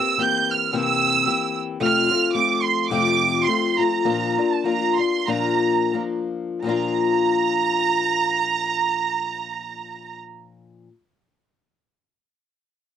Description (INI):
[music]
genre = mexican folk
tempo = 86-112 BPM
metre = 4/4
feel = swing 55% on 8ths, rubato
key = Bb major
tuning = A4 = 438 Hz
[part]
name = clear studio violin section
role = melody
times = 0.0-10.1 s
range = A5 to G6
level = -21 LUFS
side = right 7 dB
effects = cassette tape
[part]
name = nylon-string guitar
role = accompaniment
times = 0.0-10.9 s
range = F2 to G4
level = -23 LUFS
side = left 5 dB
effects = none
[sound]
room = moderate booth ambience, RT60 0.2 s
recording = home recording on cassette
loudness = -19 LUFS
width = side -9 dB against mid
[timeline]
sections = 0.0-6.6 A section; 6.6-9.4 B section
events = slowing down 1.8-6.6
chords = 0.0 C7; 1.8 F; 4.0 Bb